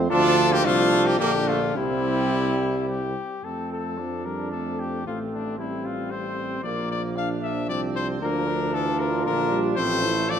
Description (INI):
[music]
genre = classical, brass quintet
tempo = 112 BPM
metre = 3/4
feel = rubato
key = F major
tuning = A4 = 440 Hz
[part]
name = mellow trombone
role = accompaniment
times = 0.0-10.4 s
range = A3 to F4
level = -28 LUFS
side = right 3 dB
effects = none
[part]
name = warm French horn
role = accompaniment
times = 0.0-10.4 s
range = D3 to A3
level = -30 LUFS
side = left 3 dB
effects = none
[part]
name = warm tuba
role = bass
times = 0.0-10.4 s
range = A1 to F2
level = -28 LUFS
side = right 3 dB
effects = none
[part]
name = clear trumpet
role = melody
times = 0.1-10.4 s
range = D4 to F5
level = -27 LUFS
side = left 6 dB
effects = none
[part]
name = clear trumpet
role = second line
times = 0.1-10.4 s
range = G3 to D4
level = -31 LUFS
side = right 6 dB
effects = none
[sound]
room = wet scoring stage reverb, RT60 1.6 s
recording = none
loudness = -22 LUFS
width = side -8 dB against mid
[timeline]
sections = 0.0-3.4 A section; 3.4-10.4 B section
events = none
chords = 0.1 Dm; 1.2 Bb; 1.8 C; 3.4 F; 5.1 Am7; 6.6 Bb; 8.2 Bb/D; 9.8 F/A